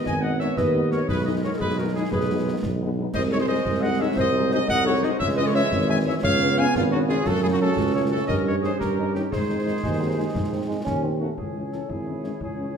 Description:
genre	military-style march for wind band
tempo	117 BPM (dotted quarters)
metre	6/8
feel	straight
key	G# minor, C# minor from 3.1 s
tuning	A4 = 440 Hz
part	mellow trumpet section	melody	0.0-12.7 s	E#4 to G#5	-28 LUFS	equal	none
part	dark woodwind section	second line	0.0-12.8 s	C#4 to E#5	-29 LUFS	left 3 dB	none
part	clear trombone section	sustained chords	0.0-11.2 s	C#3 to D#4	-30 LUFS	right 4 dB	none
part	mellow tuba	bass	0.1-12.8 s	G#1 to G#2	-25 LUFS	right 2 dB	none
part	concert snare drum, concert bass drum and clash cymbals	drums	0.1-12.5 s	none	-31 LUFS	left 1 dB	none
part	mellow French horn section	accompaniment	0.2-12.6 s	D#3 to D#4	-32 LUFS	left 6 dB	none
part	clear euphonium	second line	9.8-12.8 s	E3 to E4	-31 LUFS	right 1 dB	none
room	moderate recital hall reverb, RT60 1.4 s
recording	minimal, uncompressed stereo recording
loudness	-21 LUFS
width	side -7 dB against mid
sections	0.0-11.4 A section; 11.4-12.8 B section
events	none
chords	0.0 G#m; 1.1 G#m/B; 3.1 G#/B#; 4.2 G#7/B#; 5.2 C#m; 6.2 C#7; 7.3 F#m; 8.3 D#7/G; 9.3 G#; 11.4 C#m

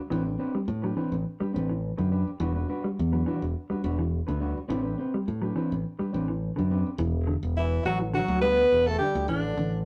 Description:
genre	afrobeat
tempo	105 BPM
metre	4/4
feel	straight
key	E minor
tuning	A4 = 440 Hz
part	mellow electric guitar	arpeggios	0.1-9.7 s	D3 to G3	-34 LUFS	equal	none
part	clean electric guitar	stabs	0.1-6.9 s	G3 to B4	-35 LUFS	equal	spring reverb
part	modern bright fingered electric bass	bass	0.1-9.8 s	E1 to A2	-31 LUFS	equal	none
part	clear alto saxophone	melody	7.6-9.8 s	D4 to B4	-27 LUFS	equal	none
part	clear trombone	second line	7.6-9.8 s	D3 to B3	-33 LUFS	equal	none
room	moderate studio reverb, RT60 0.6 s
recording	rough rehearsal-room recording, tube saturation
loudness	-27 LUFS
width	mono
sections	0.0-7.0 A section; 7.0-9.8 B section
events	none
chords	0.1 Am11; 2.4 Em9; 4.7 Am11; 7.0 Em9; 9.3 Asus4

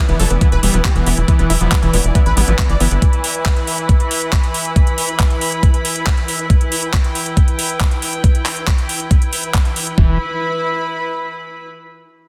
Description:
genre	psychedelic trance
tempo	138 BPM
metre	4/4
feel	straight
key	E minor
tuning	A4 = 437 Hz
part	supersaw stab	melody	0.0-3.0 s	B3 to D5	-27 LUFS	equal	phaser, sidechain pumping, dub echo
part	bubbling stepped-filter texture	sustained chords	0.0-10.0 s	E3	-30 LUFS	equal	chorus, built-in reverb, sidechain pumping
part	screaming distorted acid line	riff	0.0-2.9, 10.0-10.2 s	E3 to B3	-25 LUFS	equal	distortion, chorus, sidechain pumping, dub echo
part	rich chamber string section	texture	0.0-11.7 s	E4 to B5	-26 LUFS	equal	sidechain pumping
part	tight sequencer bass	bass	0.1-3.0, 10.0-10.2 s	E1 to A1	-18 LUFS	equal	none
part	garage drum kit	drums	0.1-10.0 s	handclaps, hi-hat	-23 LUFS	equal	small room reverb
part	electronic kick drum	drums	0.4-10.1 s	none	-16 LUFS	equal	small room reverb
room	light reverb, digital ambience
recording	dense, heavily limited modern master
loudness	-16 LUFS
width	mono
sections	0.0-10.0 A section; 10.0-11.7 B section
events	none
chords	0.0 E5

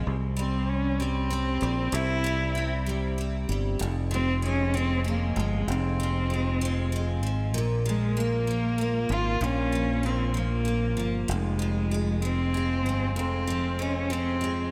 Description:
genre	six-eight pop ballad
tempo	64 BPM (dotted quarters)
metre	6/8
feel	straight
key	F minor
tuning	A4 = 440 Hz
part	picked steel-string acoustic guitar	accompaniment	0.0-14.7 s	F2 to C4	-35 LUFS	equal	double-tracked
part	fingered electric bass	bass	0.0-14.7 s	F1 to C2	-30 LUFS	equal	none
part	warm cello	melody	0.4-14.7 s	Ab3 to F4	-32 LUFS	equal	delay
room	moderate cathedral reverb, RT60 4.9 s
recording	dreamy mix soaked in reverb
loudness	-27 LUFS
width	mono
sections	0.0-14.7 A section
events	none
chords	0.1 C5; 3.8 Fm; 7.5 Bb5; 11.3 Fm

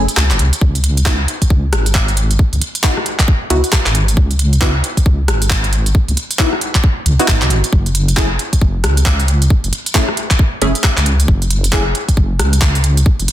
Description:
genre	UK garage, two-step garage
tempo	135 BPM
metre	4/4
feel	swing 61% on 16ths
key	C# minor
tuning	A4 = 440 Hz
part	punchy chord stab	stabs	0.0-11.8 s	A3 to G#4	-20 LUFS	equal	chorus, phaser, ping-pong delay
part	deep soft wobble bass	bass	0.0-13.3 s	F#1 to C#2	-14 LUFS	equal	chorus
part	garage drum kit	drums	0.1-13.3 s	handclaps, hi-hat, rim click	-17 LUFS	right 1 dB	soft clipping on snare
part	electronic kick drum	drums	0.6-13.2 s	none	-14 LUFS	equal	none
room	digital ambience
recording	dense, heavily limited modern master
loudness	-12 LUFS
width	side -13 dB against mid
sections	0.0-13.3 A section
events	filter sweep on synth stab 0.0-13.3; kick drops out 0.2-0.6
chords	0.0 F#5; 0.6 C#m11; 7.7 F#5

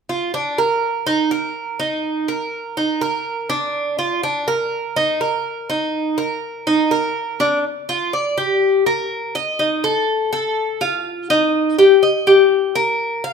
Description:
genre	latin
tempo	123 BPM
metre	4/4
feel	straight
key	unclear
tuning	A4 = 437 Hz
part	Cuban tres	solo	0.1-13.3 s	D4 to F5	-16 LUFS	equal	none
room	moderate large studio reverb, RT60 1.2 s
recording	minimal, uncompressed stereo recording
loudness	-16 LUFS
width	side -6 dB against mid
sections	0.0-7.6 A section; 7.6-13.3 B section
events	none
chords	none

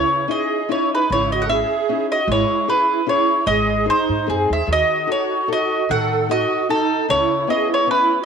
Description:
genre	italian folk, Italian serenade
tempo	150 BPM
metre	3/4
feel	swing 54% on 8ths, rubato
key	C# minor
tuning	A4 = 444 Hz
part	mandolin	melody	0.0-8.2 s	G#4 to F#5	-18 LUFS	right 1 dB	none
part	musette accordion	second line	0.0-8.2 s	B#3 to A4	-23 LUFS	right 11 dB	slapback echo
part	nylon-string guitar	accompaniment	0.0-8.2 s	C#3 to B#4	-25 LUFS	left 12 dB	none
part	upright bass	bass	1.1-7.2 s	G#1 to A2	-25 LUFS	equal	none
room	moderate plate reverb, RT60 2.3 s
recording	1960s-style stereo with parts hard left and right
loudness	-16 LUFS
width	side -6 dB against mid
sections	0.0-8.2 A section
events	none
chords	0.0 C#madd9; 2.3 C#m/G#; 3.5 G#; 4.7 D#dim; 7.1 C#m7

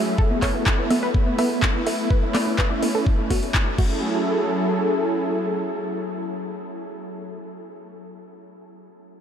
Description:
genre	progressive house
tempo	125 BPM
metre	4/4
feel	straight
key	F# minor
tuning	A4 = 442 Hz
part	warm analog pad	sustained chords	0.0-7.0 s	F#3 to A4	-25 LUFS	equal	chorus, sidechain pumping
part	analog pluck	arpeggios	0.0-7.0 s	B3 to D5	-30 LUFS	equal	chorus, sidechain pumping, analog delay
part	wide unison pluck	stabs	0.0-7.0 s	A3 to E5	-28 LUFS	right 1 dB	sidechain pumping, analog delay
part	electronic kick drum	drums	0.2-3.9 s	none	-21 LUFS	equal	none
part	deep house drum kit	drums	0.4-3.9 s	crash cymbal, handclaps, hi-hat	-29 LUFS	left 1 dB	overdrive
room	wet huge ambient reverb, RT60 9.0 s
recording	dreamy mix soaked in reverb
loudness	-20 LUFS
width	side -8 dB against mid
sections	0.0-4.0 A section; 4.0-7.9 B section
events	filter sweep on synth pluck 0.0-4.0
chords	0.2 Esus4; 3.8 F#m7

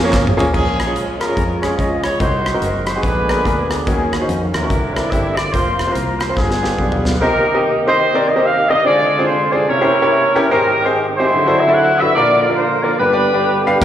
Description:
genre	uptempo gospel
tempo	145 BPM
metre	4/4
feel	swing 62% on 8ths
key	Bb minor, C minor from 7.2 s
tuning	A4 = 440 Hz
part	warm horn section	melody	0.0-13.8 s	B3 to F#5	-17 LUFS	equal	plate reverb, slapback echo
part	clear concert grand piano	accompaniment	0.0-13.8 s	G2 to F5	-18 LUFS	left 1 dB	plate reverb, slapback echo
part	percussive tonewheel organ	sustained chords	0.0-13.8 s	C3 to Ab4	-24 LUFS	right 2 dB	slow rotary speaker, overdrive, chorus vibrato, plate reverb
part	fingered electric bass	bass	0.0-7.1, 13.8 s	F1 to F2	-22 LUFS	equal	none
part	modern studio drum kit	drums	0.1-7.2, 13.8 s	crash cymbal, hi-hat, kick drum, ride cymbal, rim click, snare drum, toms	-21 LUFS	equal	none
part	handclaps and tambourine	percussion	0.1-0.5, 13.8 s	none	-29 LUFS	right 3 dB	slapback echo
part	mellow French horn section	sustained chords	0.5-7.2 s	E3 to F4	-30 LUFS	left 1 dB	none
room	moderate club reverb, RT60 0.5 s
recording	live gig heard through the venue's PA, recital hall reverb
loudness	-13 LUFS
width	side -10 dB against mid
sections	0.5-7.2 A section; 7.2-13.8 B section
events	drum fill 0.1-0.5, 6.4-7.2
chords	0.0 Bbm7; 2.2 Cm7b5; 3.0 Bb7b9; 3.9 Ebm7; 4.7 C9; 5.5 Fsus4; 6.4 G7; 7.2 Cm7; 8.9 Dm7b5; 9.7 C7b9; 10.5 Abmaj7; 11.3 D9; 12.2 Bb; 13.0 G

